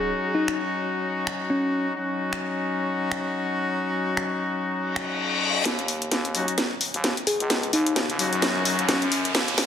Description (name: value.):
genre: bass house.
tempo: 130 BPM.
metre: 4/4.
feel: swing 58% on 16ths.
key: Eb minor.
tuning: A4 = 440 Hz.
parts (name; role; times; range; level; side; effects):
bell-like FM electric piano; melody; 0.0-1.9, 7.3-9.3 s; Db4 to Ab4; -28 LUFS; left 2 dB; chorus, cassette tape, dub echo.
brilliant horn section; stabs; 0.0-9.0 s; Gb3 to Gb4; -26 LUFS; left 2 dB; low-pass filter, dub echo.
sub drop, reverse cymbal and riser; sound effects; 0.0-0.1, 4.9-9.7 s; none; -29 LUFS; left 2 dB; none.
house drum kit; drums; 0.5-9.7 s; finger snaps, hi-hat, snare drum; -26 LUFS; equal; soft clipping on snare, high-pass filter on snare, high-pass filter on hats, high-pass filter on cymbals, high-pass filter on room.
growling FM bass; bass; 5.7-9.7 s; Db2 to Gb2; -30 LUFS; equal; tube saturation, high-pass filter.
room: moderate lush hall reverb, RT60 1.7 s, digital ambience.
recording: dense, heavily limited modern master.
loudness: -22 LUFS.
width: side -8 dB against mid.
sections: 0.0-5.7 A section; 5.7-9.7 B section.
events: filter sweep on horn section 0.0-5.7; reverse cymbal 4.9-5.7; build-up 5.7-9.7; drum fill 5.7-9.7; riser 5.7-9.7.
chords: 0.0 Ebm7.